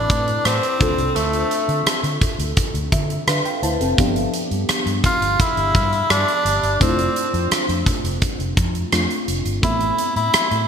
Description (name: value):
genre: 1980s-style pop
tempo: 85 BPM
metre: 4/4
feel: straight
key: unclear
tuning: A4 = 440 Hz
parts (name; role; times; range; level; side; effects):
- bright tenor saxophone; melody; 0.0-10.7 s; A3 to F4; -20 LUFS; equal; digital delay
- FM electric piano with soft pad layer; accompaniment; 0.0-10.7 s; F3 to A5; -25 LUFS; left 1 dB; chorus
- vintage muted fingered electric bass; bass; 0.0-10.6 s; F1 to D3; -24 LUFS; equal; none
- big rock drum kit; drums; 0.1-10.7 s; hi-hat, kick drum, rim click; -21 LUFS; equal; gated reverb
room: moderate lush hall reverb, RT60 2.7 s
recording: bright 1980s-style digital production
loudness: -17 LUFS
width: side -7 dB against mid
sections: 0.0-10.7 A section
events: FM electric piano fill 2.6-4.0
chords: 0.0 Amadd9; 0.8 Dm7; 4.0 G7; 6.8 Dm7/F; 9.6 Amadd9